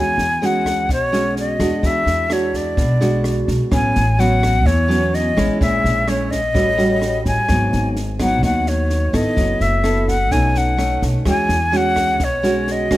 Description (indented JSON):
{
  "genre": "bossa nova",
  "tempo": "127 BPM",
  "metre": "4/4",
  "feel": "straight",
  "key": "E major",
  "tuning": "A4 = 440 Hz",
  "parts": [
    { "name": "breathy concert flute", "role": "melody", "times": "0.0-13.0 s", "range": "C#5 to G#5", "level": "-20 LUFS", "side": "left 1 dB", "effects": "none" },
    { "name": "nylon-string guitar", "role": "accompaniment", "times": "0.0-13.0 s", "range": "G#2 to A4", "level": "-20 LUFS", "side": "right 1 dB", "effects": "none" },
    { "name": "upright bass", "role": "bass", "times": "0.0-13.0 s", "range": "F#1 to E2", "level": "-21 LUFS", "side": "equal", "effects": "none" },
    { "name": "compact cocktail drum kit", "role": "drums", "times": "0.2-13.0 s", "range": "kick drum, rim click, snare drum", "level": "-25 LUFS", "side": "equal", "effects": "none" }
  ],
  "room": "light reverb",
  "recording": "none",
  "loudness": "-15 LUFS",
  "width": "side -15 dB against mid",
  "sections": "0.0-13.0 A section",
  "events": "none",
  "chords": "0.0 E69; 1.8 E9; 3.7 A69; 5.6 A#m7b5; 6.5 A6; 7.5 G#m7; 9.4 F#m7; 10.3 B9; 11.3 E69",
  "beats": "0.41 0.88 1.36 | 1.83 2.30 2.77 3.24 | 3.71 4.19 4.66 5.13 | 5.60 6.07 6.54 7.02 | 7.49 7.96 8.43 8.90 | 9.37 9.85 10.32 10.79 | 11.26 11.73 12.20 12.68"
}